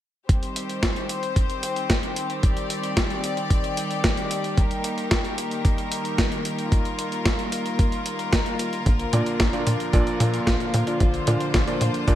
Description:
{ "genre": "italo disco", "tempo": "112 BPM", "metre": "4/4", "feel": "straight", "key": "C minor", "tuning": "A4 = 440 Hz", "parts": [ { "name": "rich studio string section", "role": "sustained chords", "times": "0.3-12.2 s", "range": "D3 to D5", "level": "-27 LUFS", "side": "left 1 dB", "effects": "none" }, { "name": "electronic kick drum", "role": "drums", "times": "0.3-12.2 s", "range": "none", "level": "-22 LUFS", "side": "equal", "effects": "none" }, { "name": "gated 80s digital drum machine", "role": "drums", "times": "0.3-12.2 s", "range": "hi-hat, snare drum", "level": "-27 LUFS", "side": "equal", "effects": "gated reverb, gated reverb snare" }, { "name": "tight sequencer bass", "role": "bass", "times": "8.9-12.2 s", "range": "Bb1 to Bb2", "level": "-23 LUFS", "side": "equal", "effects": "tube saturation" }, { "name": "warm electric grand piano", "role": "stabs", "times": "9.1-12.2 s", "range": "Bb2 to F5", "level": "-26 LUFS", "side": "right 2 dB", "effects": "ping-pong delay" } ], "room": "light reverb, digital ambience", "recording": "none", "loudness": "-21 LUFS", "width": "side -12 dB against mid", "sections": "0.3-12.2 A section", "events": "none", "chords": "0.3 Cm; 4.6 Eb; 8.9 Bb", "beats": "| 0.29 0.83 1.36 1.90 | 2.43 2.97 3.50 4.04 | 4.58 5.11 5.65 6.18 | 6.72 7.25 7.79 8.33 | 8.86 9.40 9.93 10.47 | 11.01 11.54 12.08" }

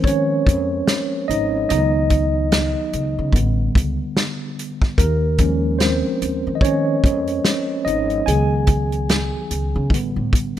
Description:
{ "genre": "R&B, neo-soul", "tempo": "73 BPM", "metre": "4/4", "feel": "swing 60% on 16ths", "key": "unclear", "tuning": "A4 = 440 Hz", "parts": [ { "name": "tine electric piano", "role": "accompaniment", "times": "0.0-10.6 s", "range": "D3 to Ab5", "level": "-20 LUFS", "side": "equal", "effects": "medium stereo tremolo" }, { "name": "upright bass", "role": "bass", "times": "0.0-10.5 s", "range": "Ab1 to Eb3", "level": "-22 LUFS", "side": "equal", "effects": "none" }, { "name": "warm soul drum kit", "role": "drums", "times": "0.0-10.6 s", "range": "hi-hat, kick drum, snare drum", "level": "-19 LUFS", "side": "equal", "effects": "none" } ], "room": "light reverb, small room ambience", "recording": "rough home demo mix, faint mains hum", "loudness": "-17 LUFS", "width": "side -11 dB against mid", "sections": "0.0-10.6 A section", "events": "tine electric piano solo 0.0-10.6", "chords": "0.0 Eb9sus4; 1.7 Db9sus4; 3.3 A9sus4; 5.0 Eb9sus4; 8.3 Db9sus4; 9.9 A9sus4", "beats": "0.05 0.87 | 1.69 2.51 3.34 4.16 | 4.98 5.80 6.62 7.45 | 8.27 9.09 9.91" }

